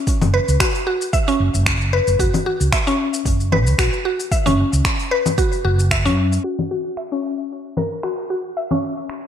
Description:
organic downtempo; 113 BPM; 4/4; swing 54% on 16ths; F# mixolydian; A4 = 440 Hz
mallet-like synth pluck; arpeggios; 0.0-9.2 s; C#4 to E5; -21 LUFS; left 1 dB; chorus, ping-pong delay
deep house drum kit; drums; 0.1-9.2 s; congas, finger snaps, hi-hat, shaker; -23 LUFS; left 3 dB; gated reverb
electronic kick drum; drums; 0.1-6.0 s; -21 LUFS; right 1 dB
mellow fretless electric bass; bass; 0.2-6.4 s; F#1 to F#2; -18 LUFS; right 1 dB; sidechain pumping
moderate lush hall reverb, RT60 1.7 s; bright 1980s-style digital production, low-pass filter; -17 LUFS; side -9 dB against mid
0.0-6.4 A section; 6.4-9.3 B section
filter sweep on synth pluck 6.4-9.3
0.0 N.C.; 6.4 F#5

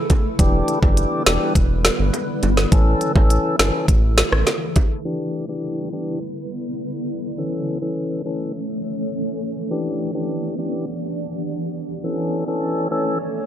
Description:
dancehall; 103 BPM; 4/4; straight; E dorian; A4 = 440 Hz
granular cloud pad; sustained chords; 0.0-13.5 s; C#3 to D5; -26 LUFS; equal; built-in reverb, sidechain pumping
afro-pop drum kit; drums; 0.1-4.9 s; hi-hat, kick drum, rim click, snare drum; -17 LUFS; equal
bongos; percussion; 0.1-4.9 s; -28 LUFS; right 5 dB
tonewheel organ; accompaniment; 0.4-13.2 s; E3 to A4; -23 LUFS; left 1 dB; slow rotary speaker
round analog bass; bass; 0.4-4.4 s; E1 to A1; -19 LUFS; equal
little or no reverb; dry, gritty hardware recording, low-pass filter; -18 LUFS; side -10 dB against mid
0.0-5.1 A section; 5.1-13.5 B section
filter sweep 5.1-13.5
0.4 Em7; 2.7 A; 5.1 Em7; 7.4 A; 9.7 Em7; 12.0 A

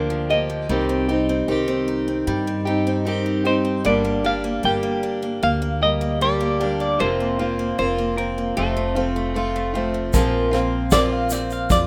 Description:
acoustic folk duo or small band; 76 BPM; 4/4; straight; Bb major; A4 = 440 Hz
semi-hollow electric guitar; melody; 0.0-11.9 s; A4 to G5; -25 LUFS; equal; tremolo
picked steel-string acoustic guitar; accompaniment; 0.0-11.9 s; F2 to G4; -25 LUFS; equal
picked steel-string acoustic guitar; arpeggios; 0.0-11.9 s; F3 to G4; -29 LUFS; equal
upright bass; bass; 0.0-11.9 s; F1 to G2; -29 LUFS; equal
soft brush drum kit; drums; 10.1-11.9 s; kick drum, snare drum; -22 LUFS; equal
egg shaker; percussion; 10.1-11.9 s; -35 LUFS; equal
small room ambience; rough home demo mix; -21 LUFS; mono
0.0-10.1 A section; 10.1-11.9 B section
clean electric guitar solo 10.1-11.9
0.0 Gm7; 0.7 Cm; 3.9 Gm; 7.0 Fsus4; 8.6 F; 10.1 Bbsus2

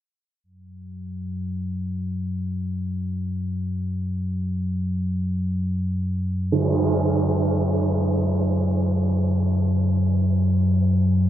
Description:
dark ambient drone; free time; A4 = 440 Hz
deep rumbling drone; drone; 0.7-11.3 s; F#2 to F#3; -22 LUFS; equal; built-in reverb
tam-tam; percussion; 6.5-6.7 s; -24 LUFS; right 3 dB; low-pass filter on cymbals
wet cathedral reverb, RT60 6.7 s; dark, warm production; -21 LUFS; side -12 dB against mid
0.4-11.3 A section
fade-in on synth drone 0.4-11.3; fade-in on drum 0.4-11.3

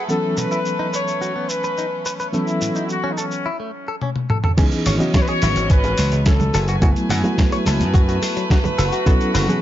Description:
nu-disco, nu disco; 107 BPM; 4/4; straight; C# minor; A4 = 444 Hz
mellow trumpet section; melody; 0.0-9.6 s; C#4 to C#5; -25 LUFS; left 2 dB; digital delay
reed electric piano; accompaniment; 0.0-9.6 s; E3 to G#5; -23 LUFS; equal; fast tremolo
warm chamber violin section; sustained chords; 0.0-9.6 s; A3 to G#5; -28 LUFS; right 1 dB; sidechain pumping
direct-recorded clean electric guitar; riff; 0.0-9.6 s; A2 to F#5; -28 LUFS; left 2 dB; wide subtle chorus
dusty soul sampler-style drum kit; drums; 0.1-9.6 s; cabasa, crash cymbal, hi-hat, snare drum, toms; -24 LUFS; equal; overdrive
slap bass; bass; 4.6-9.5 s; F#1 to F#2; -20 LUFS; equal
electronic kick drum; drums; 4.6-9.2 s; -16 LUFS; equal
congas, egg shaker and bongos; percussion; 4.6-9.6 s; -28 LUFS; right 3 dB
little or no reverb; nothing above 7.5 kHz; -17 LUFS; side -12 dB against mid
0.0-4.6 A section; 4.6-9.6 B section
drum fill 4.0-4.6; drop 4.6-9.6
0.1 B9sus4; 2.3 A69; 4.6 C#m9; 6.5 F#m11

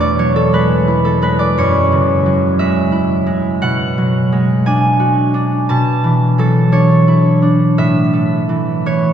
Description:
classical, solo harp piece; 58 BPM (dotted quarters); 6/8; rubato; B dorian; A4 = 440 Hz
concert harp; solo; 0.0-9.1 s; E2 to A5; -11 LUFS; equal
wet cathedral reverb, RT60 4.3 s; minimal, uncompressed stereo recording; -11 LUFS; side -9 dB against mid
0.0-9.1 A section
0.0 Eadd9; 1.6 F#sus2; 3.6 Bm6; 5.7 Dmaj9/B; 7.8 Aadd9

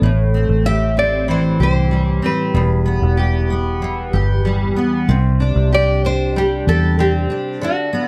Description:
acoustic pop; 95 BPM; 4/4; straight; A4 = 437 Hz
fingerpicked steel-string acoustic guitar; accompaniment; 0.0-8.1 s; E2 to A4; -21 LUFS; equal; double-tracked
vintage muted fingered electric bass; bass; 0.0-7.3 s; E1 to E2; -19 LUFS; equal
nylon-string guitar; melody; 0.7-8.1 s; F#4 to E5; -22 LUFS; equal; tape echo
light reverb; lossy compression artefacts; -17 LUFS; mono
0.0-8.1 A section
0.0 Am7; 2.6 Em; 5.1 Csus2

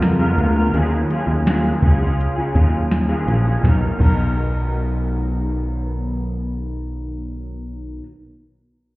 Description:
indie pop, bedroom pop; 83 BPM; 4/4; straight; B lydian; A4 = 436 Hz
electric guitar through a small old amp; accompaniment; 0.0-8.1 s; B2 to A#4; -23 LUFS; left 1 dB; analog chorus, warbly pitch drift
picked electric bass; bass; 0.0-8.0 s; A#1 to E#2; -19 LUFS; equal
soft vintage rhythm box; drums; 0.0-4.2 s; crash cymbal, hi-hat, kick drum, snare drum; -18 LUFS; equal
light reverb; heard muffled through a wall, stone room reverb, EQ; -17 LUFS; side -20 dB against mid
0.0-3.6 A section; 3.6-6.5 B section
0.0 C#6; 0.7 D#m11; 3.6 Bmaj7

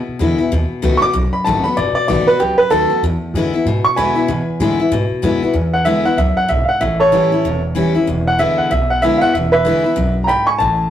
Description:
rockabilly; 190 BPM; 4/4; swing 61% on 8ths; E mixolydian; A4 = 440 Hz
picked steel-string acoustic guitar; accompaniment; 0.0-10.9 s; E2 to F#4; -18 LUFS; left 3 dB
upright bass; bass; 0.0-10.9 s; E1 to B2; -20 LUFS; equal
bright upright piano; melody; 1.0-10.9 s; G4 to D6; -15 LUFS; right 1 dB
moderate stone room reverb, RT60 0.9 s; rough rehearsal-room recording, tube saturation; -13 LUFS; side -10 dB against mid
0.0-5.5 A section; 5.5-10.9 B section
upright piano solo 0.0-5.5
0.0 E7; 0.5 B7; 3.0 E7; 6.8 A7; 8.1 E7

